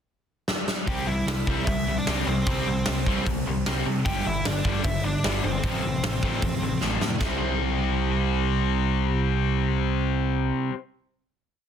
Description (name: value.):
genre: punk rock.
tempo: 152 BPM.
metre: 4/4.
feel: straight.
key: C major.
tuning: A4 = 441 Hz.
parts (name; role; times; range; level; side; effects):
big rock drum kit; drums; 0.5-7.3 s; hi-hat, kick drum, snare drum; -28 LUFS; equal; soft clipping on snare.
high-gain lead guitar; melody; 0.9-6.8 s; C4 to G5; -31 LUFS; left 1 dB; distortion, tape echo.
overdriven electric guitar; riff; 0.9-10.7 s; F2 to C4; -29 LUFS; left 10 dB; none.
overdriven semi-hollow guitar; riff; 0.9-10.7 s; G2 to E4; -29 LUFS; right 9 dB; none.
growling picked electric bass; bass; 0.9-10.5 s; G1 to C3; -28 LUFS; equal; overdrive.
room: little or no reverb.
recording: dense, heavily limited modern master.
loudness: -23 LUFS.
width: side -8 dB against mid.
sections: 0.0-0.9 pickup bar; 0.9-7.2 verse; 7.2-10.3 final chord.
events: drum fill 0.5-0.9, 6.8-7.2.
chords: 0.0 N.C.; 0.9 C; 4.1 G5; 5.6 F/A; 7.2 C.